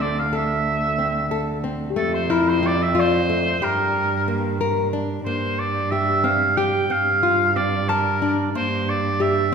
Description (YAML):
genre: contemporary instrumental, chamber music in an uneven meter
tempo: 182 BPM (eighths)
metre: 5/8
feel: straight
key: G dorian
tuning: A4 = 440 Hz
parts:
  - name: clear oboe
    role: melody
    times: 0.0-9.5 s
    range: A4 to G5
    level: -22 LUFS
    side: right 1 dB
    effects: none
  - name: nylon-string guitar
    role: arpeggios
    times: 0.0-9.5 s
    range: A3 to A5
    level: -24 LUFS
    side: left 3 dB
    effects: none
  - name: warm cello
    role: bass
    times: 0.0-9.5 s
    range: D2 to G2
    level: -25 LUFS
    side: right 4 dB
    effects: none
  - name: celesta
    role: texture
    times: 1.9-3.9 s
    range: G4 to D5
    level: -29 LUFS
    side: left 6 dB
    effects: none
room: wet concert hall reverb, RT60 1.7 s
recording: minimal, uncompressed stereo recording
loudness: -19 LUFS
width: side -6 dB against mid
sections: 0.0-5.3 A section; 5.3-9.5 B section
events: none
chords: 0.0 D7sus2; 2.0 Fmaj7; 3.6 Gm; 5.3 C5/G; 6.9 Gm11; 8.6 C5/G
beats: | 0.32 0.65 0.98 1.30 1.64 | 1.96 2.29 2.62 2.95 3.28 | 3.61 3.94 4.27 4.60 4.93 | 5.26 5.59 5.92 6.25 6.58 | 6.91 7.24 7.56 7.89 8.22 | 8.55 8.88 9.21 9.54